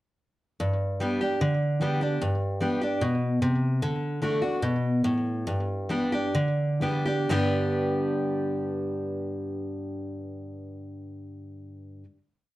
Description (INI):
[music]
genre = country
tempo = 119-150 BPM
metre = 4/4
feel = straight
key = G major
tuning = A4 = 439 Hz
[part]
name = picked steel-string acoustic guitar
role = solo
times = 0.6-12.1 s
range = G2 to G4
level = -25 LUFS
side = equal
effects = slapback echo
[sound]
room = moderate studio reverb, RT60 0.5 s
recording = dark, warm production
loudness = -25 LUFS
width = side -16 dB against mid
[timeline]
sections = 0.6-7.3 A section; 7.3-11.3 final chord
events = slowing down 3.8-7.3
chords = 0.6 G; 3.8 D; 5.5 G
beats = | 0.60 1.00 1.41 1.81 | 2.21 2.61 3.02 3.42 | 3.82 4.22 4.63 5.04 | 5.46 5.90 6.35 6.82 | 7.31 7.81 8.31 8.81 | 9.31 9.81 10.32 10.82